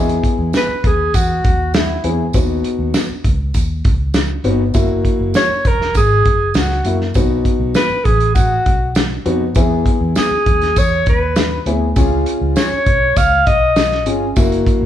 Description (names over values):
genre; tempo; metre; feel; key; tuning
uptempo 1960s-style soul; 100 BPM; 4/4; straight; E major; A4 = 440 Hz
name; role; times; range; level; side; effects
warm upright piano; accompaniment; 0.0-14.9 s; A#3 to G#4; -18 LUFS; left 2 dB; none
vintage muted fingered electric bass; bass; 0.0-14.9 s; E1 to F#2; -20 LUFS; equal; none
natural country drum kit; drums; 0.1-14.8 s; hi-hat, kick drum, snare drum; -16 LUFS; equal; vintage 12-bit sampler grit
tambourine; percussion; 0.5-14.5 s; none; -34 LUFS; right 5 dB; none
breathy alto saxophone; melody; 0.6-14.1 s; E4 to E#5; -16 LUFS; equal; none
room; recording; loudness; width
moderate large studio reverb, RT60 1.2 s; band playing live in one room, cassette tape; -13 LUFS; side -11 dB against mid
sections
0.0-14.9 A section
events
none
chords
0.0 E; 2.3 B; 4.7 F#7; 7.2 B; 9.6 E; 12.0 C#